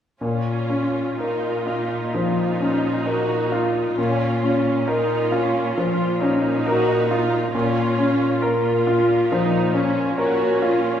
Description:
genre	classical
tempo	62-70 BPM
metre	4/4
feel	rubato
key	Bb minor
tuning	A4 = 440 Hz
part	clear concert grand piano	melody	0.2-11.0 s	Bb2 to Bb4	-20 LUFS	left 1 dB	none
part	warm symphonic viola section	accompaniment	0.2-11.0 s	Db4 to Gb4	-24 LUFS	right 1 dB	none
part	rich symphonic cello section	bass	0.2-11.0 s	Bb2	-27 LUFS	equal	none
room	wet scoring stage reverb, RT60 1.6 s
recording	heard from further back in the room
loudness	-18 LUFS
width	side -9 dB against mid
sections	0.2-11.0 A section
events	none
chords	0.2 Bbm

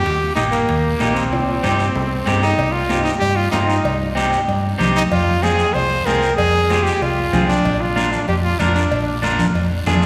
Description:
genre	latin, cumbia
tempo	189 BPM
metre	4/4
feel	straight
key	C minor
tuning	A4 = 440 Hz
part	clear trumpet	melody	0.0-10.1 s	Bb3 to C5	-22 LUFS	equal	none
part	hollow-body short-scale fingered electric bass	bass	0.0-10.1 s	Bb1 to G2	-23 LUFS	equal	none
part	congas	percussion	0.0-10.0 s	none	-28 LUFS	equal	none
part	guiro	percussion	0.0-10.1 s	none	-37 LUFS	equal	none
part	timbales and cowbell	percussion	0.1-10.0 s	none	-31 LUFS	equal	none
part	electric guitar at the edge of break-up	accompaniment	0.4-10.1 s	Bb3 to Bb4	-24 LUFS	equal	none
room	wet church reverb, RT60 3.6 s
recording	recorded in a church or concert hall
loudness	-18 LUFS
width	mono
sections	0.0-2.6 A section; 2.6-10.1 B section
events	drum fill 1.3-2.6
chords	0.0 Eb; 1.3 Cm; 5.1 Fm; 7.7 Bb

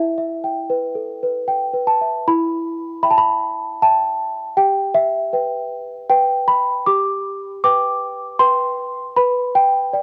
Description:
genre	classical, lullaby for celesta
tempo	78 BPM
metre	3/4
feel	straight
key	E minor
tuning	A4 = 440 Hz
part	small celesta	solo	0.0-10.0 s	E4 to D6	-19 LUFS	equal	none
room	light reverb, small room reverb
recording	home recording on cassette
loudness	-19 LUFS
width	mono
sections	0.0-2.3 A section; 2.3-10.0 B section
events	none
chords	0.0 Em; 4.6 Em/G; 9.2 G/B

